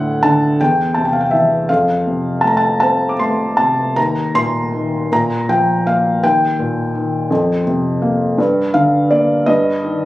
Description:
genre	classical, lyrical solo piano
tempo	54 BPM (dotted quarters)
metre	6/8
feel	uneven beats, rubato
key	unclear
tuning	A4 = 440 Hz
part	felt-muted upright piano	solo	0.0-10.1 s	D2 to D6	-13 LUFS	equal	none
room	light reverb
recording	recorded on a phone in the room, studio reverb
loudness	-13 LUFS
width	side -16 dB against mid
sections	0.0-10.1 A section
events	none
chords	0.0 D; 0.6 C/E; 1.7 F; 4.0 Eb5; 5.1 Bb5; 6.2 Eb; 7.3 Fsus4; 8.4 Gm; 9.5 Eb/G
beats	0.60 | 1.69 2.81 | 3.97 5.12 | 6.23 7.30 | 8.38 9.48

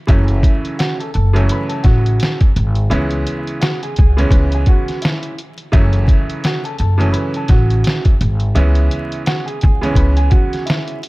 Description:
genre	hip hop, boom-bap hip-hop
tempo	85 BPM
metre	4/4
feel	swing 59% on 16ths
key	F# minor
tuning	A4 = 440 Hz
part	mellow electric guitar	melody	0.1-11.0 s	E4 to B5	-25 LUFS	right 2 dB	wide subtle chorus, tape echo
part	clear upright piano	accompaniment	0.1-11.0 s	C#3 to C#4	-22 LUFS	right 1 dB	cassette tape
part	upright bass	bass	0.1-10.3 s	F#1 to C#2	-15 LUFS	equal	none
part	trip hop sampler-style drum kit	drums	0.1-11.1 s	hi-hat, kick drum, snare drum	-14 LUFS	equal	none
room	studio reverb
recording	dark, warm production, vinyl crackle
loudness	-13 LUFS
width	side -21 dB against mid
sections	0.1-11.1 A section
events	none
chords	0.1 F#m7; 2.9 C#m7; 5.7 F#m7; 8.6 C#m7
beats	| 0.09 0.79 1.50 2.20 | 2.91 3.62 4.32 5.03 | 5.73 6.44 7.14 7.85 | 8.56 9.26 9.97 10.67

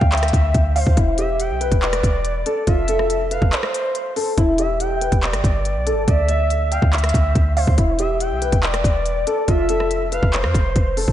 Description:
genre	hip hop, trap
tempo	141 BPM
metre	4/4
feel	half-time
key	E phrygian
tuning	A4 = 439 Hz
part	dark concert grand piano	melody	0.0-11.1 s	E4 to G5	-23 LUFS	equal	lush chorus, tape echo
part	gliding portamento lead	second line	0.0-11.1 s	C5 to G5	-25 LUFS	equal	chorus, phaser, tape echo
part	clean 808-style bass	bass	0.0-11.1 s	E1 to F2	-21 LUFS	equal	none
part	trap drum kit	drums	0.0-11.1 s	handclaps, hi-hat, kick drum, rim click	-20 LUFS	equal	vintage 12-bit sampler grit
room	moderate lush hall reverb, RT60 1.9 s, digital ambience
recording	dreamy mix soaked in reverb, nothing above 10.5 kHz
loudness	-16 LUFS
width	side -12 dB against mid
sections	0.0-11.1 A section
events	break 3.5-4.4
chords	0.0 Dsus2; 1.0 Em7; 2.7 F; 4.4 Em7; 6.1 Dsus2; 7.8 Em7; 9.5 F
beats	0.12 0.55 | 0.97 1.40 1.82 2.25 | 2.67 3.10 3.52 3.95 | 4.38 4.80 5.23 5.65 | 6.08 6.50 6.93 7.36 | 7.78 8.21 8.63 9.06 | 9.48 9.91 10.33 10.76

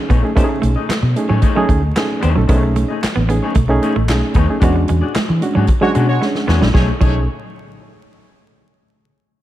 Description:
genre	funk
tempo	113 BPM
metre	4/4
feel	straight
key	B mixolydian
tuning	A4 = 440 Hz
part	barky reed electric piano	stabs	0.0-7.3 s	G#3 to A4	-20 LUFS	right 2 dB	overdrive
part	semi-hollow electric guitar	accompaniment	0.1-7.2 s	A3 to D#5	-24 LUFS	left 6 dB	none
part	semi-hollow electric guitar	riff	0.1-7.2 s	F#3 to B3	-24 LUFS	right 5 dB	none
part	vintage muted fingered electric bass	bass	0.1-7.3 s	A1 to E3	-16 LUFS	equal	none
part	swinging big-band drum kit	drums	0.1-7.1 s	crash cymbal, handclaps, hi-hat, kick drum, snare drum	-18 LUFS	equal	none
part	mellow horn section	second line	5.8-7.2 s	G#3 to C#5	-25 LUFS	equal	none
room	light reverb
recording	dark, warm production, vinyl crackle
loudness	-13 LUFS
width	side -14 dB against mid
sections	0.0-6.7 A section; 6.7-8.9 B section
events	band accent 4.6-6.7; drum fill 6.2-6.7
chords	0.0 B13; 4.6 E13; 6.7 B13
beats	| 0.36 0.90 1.43 1.96 | 2.49 3.02 3.56 4.09 | 4.62 5.15 5.68 6.21 | 6.75

